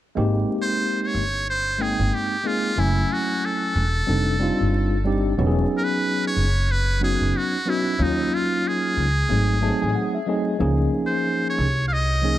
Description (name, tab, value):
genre	hip hop, jazz-hop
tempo	92 BPM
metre	4/4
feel	swing 60% on 16ths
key	unclear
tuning	A4 = 440 Hz
part	tine electric piano	accompaniment	0.2-12.4 s	F3 to A5	-24 LUFS	equal	medium stereo tremolo
part	upright bass	bass	0.2-12.4 s	Fb1 to Eb2	-22 LUFS	equal	none
part	trumpet with metal mute	melody	0.6-12.4 s	Eb4 to F5	-25 LUFS	right 1 dB	tape echo
room	light reverb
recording	dark, warm production, vinyl crackle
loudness	-20 LUFS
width	side -13 dB against mid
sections	0.2-12.4 A section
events	tine electric piano fill 9.3-10.6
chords	0.2 Abmaj7; 2.8 Gbm9; 4.1 F13; 5.4 Emaj13 (rootless); 8.0 Ebm9; 9.3 Ab7b9; 10.6 Db69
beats	| 0.17 0.82 1.47 2.12 | 2.78 3.43 4.08 4.73 | 5.39 6.04 6.69 7.34 | 7.99 8.65 9.30 9.95 | 10.60 11.26 11.91